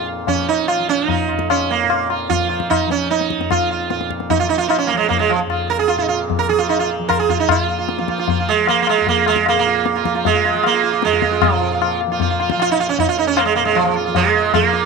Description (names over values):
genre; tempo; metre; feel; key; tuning
indian classical, Hindustani; 152 BPM; 5/4; straight; F raga malkauns; A4 = 441 Hz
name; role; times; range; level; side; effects
sitar; melody; 0.0-14.9 s; F3 to Bb4; -16 LUFS; right 9 dB; none
tanpura; drone; 0.0-14.9 s; F2 to F3; -26 LUFS; left 2 dB; none
tabla; percussion; 0.3-14.9 s; none; -21 LUFS; left 11 dB; none
room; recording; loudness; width
light reverb, small room ambience; 1960s-style stereo with parts hard left and right; -15 LUFS; side -4 dB against mid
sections
0.0-7.5 A section; 7.5-14.9 B section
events
speeding up 0.0-14.9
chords
none